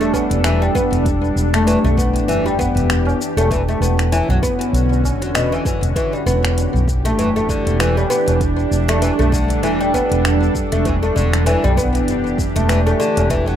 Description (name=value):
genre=organic downtempo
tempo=98 BPM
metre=4/4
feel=swing 57% on 16ths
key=E dorian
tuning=A4 = 440 Hz
part: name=bowed-like drone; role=sustained chords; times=0.0-13.6 s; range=D3 to A4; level=-21 LUFS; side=right 2 dB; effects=built-in reverb, sidechain pumping
part: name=oud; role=arpeggios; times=0.0-13.6 s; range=B2 to B3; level=-19 LUFS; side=left 2 dB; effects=ping-pong delay
part: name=woody fretless electric bass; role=bass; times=0.0-13.5 s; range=E1 to B1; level=-18 LUFS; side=equal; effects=none
part: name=organic electronic drum kit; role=drums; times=0.0-13.6 s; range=finger snaps, hi-hat, shaker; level=-25 LUFS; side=equal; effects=overdrive
part: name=tabla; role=percussion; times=0.0-13.3 s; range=none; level=-29 LUFS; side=right 1 dB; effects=none
part: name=electronic kick drum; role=drums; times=0.1-13.4 s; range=none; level=-24 LUFS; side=equal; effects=none
room=light reverb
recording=rough home demo mix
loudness=-14 LUFS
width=side -10 dB against mid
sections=0.0-13.6 A section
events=none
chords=0.0 Em7; 3.5 Dmaj7/E; 6.0 Em7